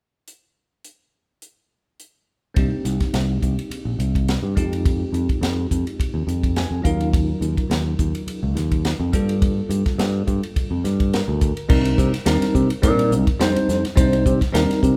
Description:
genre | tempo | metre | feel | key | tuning
electric jazz fusion | 105 BPM | 4/4 | swing 54% on 16ths | C minor | A4 = 441 Hz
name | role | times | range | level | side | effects
tight funk drum kit | drums | 0.3-15.0 s | crash cymbal, hi-hat, kick drum, ride cymbal, snare drum | -24 LUFS | equal | none
bell-like tine electric piano | accompaniment | 2.5-15.0 s | Gb3 to Ab5 | -26 LUFS | equal | none
fingered electric bass | bass | 2.6-15.0 s | Bb1 to C3 | -24 LUFS | equal | none
room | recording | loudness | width
moderate large studio reverb, RT60 1.2 s | band playing live in one room | -20 LUFS | mono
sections
0.3-2.6 A section; 2.6-11.7 B section; 11.7-15.0 C section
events
tine electric piano fill 6.3-7.1, 10.8-11.7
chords
0.3 N.C.; 2.6 Cm9; 4.6 Fm9; 6.9 Ebm9; 9.1 Gm9; 11.7 Cm9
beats
| 0.28 0.85 1.42 2.00 | 2.57 3.14 3.71 4.28 | 4.86 5.43 6.00 6.57 | 7.14 7.71 8.28 8.85 | 9.42 9.99 10.56 11.13 | 11.70 12.26 12.83 13.40 | 13.97 14.54

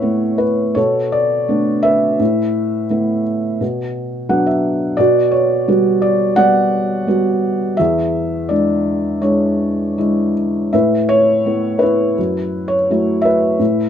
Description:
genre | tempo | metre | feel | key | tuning
classical, lyrical solo piano | 84 BPM | 4/4 | uneven beats, rubato | A major | A4 = 440 Hz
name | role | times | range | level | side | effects
felt-muted upright piano | solo | 0.0-13.9 s | E2 to F#5 | -14 LUFS | equal | none
room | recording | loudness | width
moderate studio reverb, RT60 0.6 s | dark, warm production | -14 LUFS | side -9 dB against mid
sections
0.0-13.9 A section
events
felt piano fill 4.0-5.0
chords
0.0 Asus2; 0.8 Bm7; 2.2 Asus2; 3.6 Bm; 5.0 Gmaj7/B; 7.8 E7; 10.7 Asus2; 12.2 F#m7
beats
0.03 0.76 1.49 | 2.20 2.91 3.61 4.30 | 4.99 5.68 6.38 7.08 | 7.79 8.51 9.22 9.97 | 10.73 11.46 12.19 12.90 | 13.60

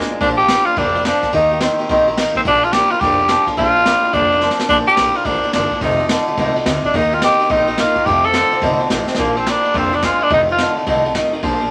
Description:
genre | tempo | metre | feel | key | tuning
rockabilly | 214 BPM | 4/4 | swing 64% on 8ths | Bb major | A4 = 438 Hz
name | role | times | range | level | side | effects
breathy tenor saxophone | melody | 0.0-10.8 s | Bb3 to A4 | -17 LUFS | equal | none
picked acoustic archtop guitar | accompaniment | 0.0-11.7 s | F2 to G4 | -22 LUFS | equal | none
twangy electric guitar | riff | 0.0-11.7 s | F2 to C4 | -25 LUFS | equal | none
jazz brush drum kit | drums | 0.0-11.7 s | kick drum, ride cymbal, snare drum | -26 LUFS | equal | none
upright bass | bass | 0.1-11.7 s | F1 to F2 | -29 LUFS | equal | none
room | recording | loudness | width
light reverb | vinyl crackle | -16 LUFS | mono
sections
0.2-9.2 A section; 9.2-11.7 B section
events
drum fill 0.0, 4.4, 9.0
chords
0.2 Bb; 1.3 Eb; 2.5 Bb; 5.8 F7; 6.9 Eb; 8.1 F7; 9.2 Bb; 10.3 F7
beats
| 0.21 0.49 0.77 1.05 | 1.33 1.61 1.89 2.17 | 2.45 2.73 3.01 3.29 | 3.58 3.85 4.14 4.42 | 4.70 4.98 5.26 5.54 | 5.82 6.10 6.38 6.66 | 6.94 7.22 7.50 7.78 | 8.06 8.34 8.62 8.90 | 9.19 9.46 9.75 10.03 | 10.31 10.59 10.87 11.15 | 11.43

